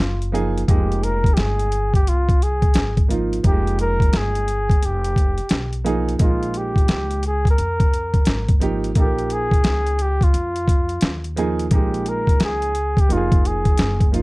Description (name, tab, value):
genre	hip hop, jazz-hop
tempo	87 BPM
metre	4/4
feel	swing 65% on 16ths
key	F minor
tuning	A4 = 440 Hz
part	breathy flugelhorn	melody	0.0-14.1 s	F4 to Bb4	-24 LUFS	equal	none
part	upright bass	bass	0.0-14.2 s	F1 to F2	-24 LUFS	equal	none
part	boom bap sampler-style drum kit	drums	0.2-14.2 s	hi-hat, kick drum, snare drum	-18 LUFS	equal	none
part	dark grand piano	accompaniment	0.3-14.2 s	F3 to Bb4	-24 LUFS	right 3 dB	none
room	light reverb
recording	dark, warm production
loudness	-17 LUFS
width	side -23 dB against mid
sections	0.0-14.2 A section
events	none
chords	0.0 Fm9; 6.2 Bbm7; 13.1 Fm7